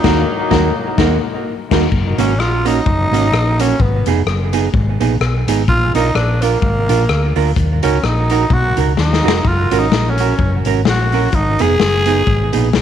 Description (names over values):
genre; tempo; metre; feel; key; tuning
ska; 128 BPM; 4/4; swing 56% on 8ths; Eb minor; A4 = 439 Hz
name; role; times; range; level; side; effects
mellow horn section; melody; 0.0-1.4 s; Eb3 to Eb4; -22 LUFS; left 2 dB; none
archtop guitar, miked and amplified; accompaniment; 0.0-12.7 s; Bb3 to Bb4; -19 LUFS; right 11 dB; tape echo
dark upright piano; stabs; 0.0-1.9 s; Bb3 to Bb4; -22 LUFS; left 8 dB; tape echo
hollow-body short-scale fingered electric bass; bass; 0.0-12.8 s; F1 to Eb2; -17 LUFS; equal; none
raw garage drum kit; drums; 0.0-12.8 s; crash cymbal, hi-hat, kick drum, rim click, snare drum; -19 LUFS; left 4 dB; none
growling tenor saxophone; melody; 2.2-12.8 s; Bb3 to Ab4; -18 LUFS; equal; none
room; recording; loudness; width
light reverb; 1960s-style stereo with parts hard left and right; -12 LUFS; side -9 dB against mid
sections
0.0-1.9 A section; 1.9-12.8 B section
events
band accent 0.0-1.9; tenor saxophone solo 1.9-12.8; drum fill 9.0-9.4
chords
0.0 Ebm; 1.9 Gb; 3.8 Abm; 5.7 Bb; 7.6 Ebm; 9.4 Gb; 11.3 Abm